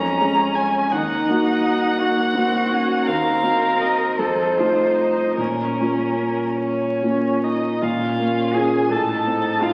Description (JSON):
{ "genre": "classical, slow romantic movement for piano quartet", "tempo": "48-57 BPM (dotted quarters)", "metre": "6/8", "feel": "rubato", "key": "Bb minor", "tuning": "A4 = 440 Hz", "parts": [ { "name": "rich violin", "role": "melody", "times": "0.0-9.7 s", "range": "Bb4 to Bb5", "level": "-25 LUFS", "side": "equal", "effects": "none" }, { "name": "rich cello", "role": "second line", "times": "0.0-9.7 s", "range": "Db4 to Bb4", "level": "-26 LUFS", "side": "equal", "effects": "none" }, { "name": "dark baby grand piano", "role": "accompaniment", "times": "0.0-9.7 s", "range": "Eb2 to Ab4", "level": "-24 LUFS", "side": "equal", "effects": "none" }, { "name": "warm viola", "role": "accompaniment", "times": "0.0-9.7 s", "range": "Bb3 to Eb4", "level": "-32 LUFS", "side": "equal", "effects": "none" } ], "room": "wet recital hall reverb, RT60 1.5 s", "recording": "very old 78 rpm record, vinyl crackle", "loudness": "-20 LUFS", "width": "mono", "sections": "0.0-7.8 A section; 7.8-9.7 B section", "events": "none", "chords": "0.0 Db/F; 0.9 Ebm; 3.1 Cdim/Eb; 4.2 F7; 5.4 Bbm; 8.9 F7/A" }